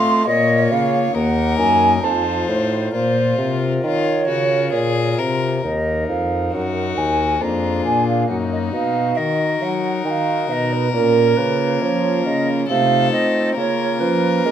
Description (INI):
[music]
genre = classical, baroque-style sonata movement with continuo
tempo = 68 BPM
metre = 3/4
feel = straight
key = Bb minor, Eb minor from 5.6 s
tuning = A4 = 441 Hz
[part]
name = rich violin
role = melody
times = 0.0-14.5 s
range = Eb4 to F5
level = -25 LUFS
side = left 7 dB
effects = none
[part]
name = mellow hollow wooden flute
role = second line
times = 0.0-14.5 s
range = Bb4 to C6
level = -20 LUFS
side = right 3 dB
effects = none
[part]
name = pipe organ, foundations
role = accompaniment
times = 0.0-14.5 s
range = Eb2 to Eb5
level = -21 LUFS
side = left 2 dB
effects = none
[part]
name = warm bassoon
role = bass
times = 0.0-14.5 s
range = Eb2 to C4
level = -23 LUFS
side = equal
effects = none
[sound]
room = moderate recital hall reverb, RT60 1.3 s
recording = close, detailed microphones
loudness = -16 LUFS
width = side -9 dB against mid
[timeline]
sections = 0.0-5.6 A section; 5.6-14.5 A section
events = none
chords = 0.3 Bbm; 1.1 Ebm; 2.0 F7; 2.9 Bbm; 5.6 Ebm; 7.4 Bb7/F; 8.3 Ebm/Gb; 10.9 Bbm; 12.7 F7/C; 13.6 Bbm/Db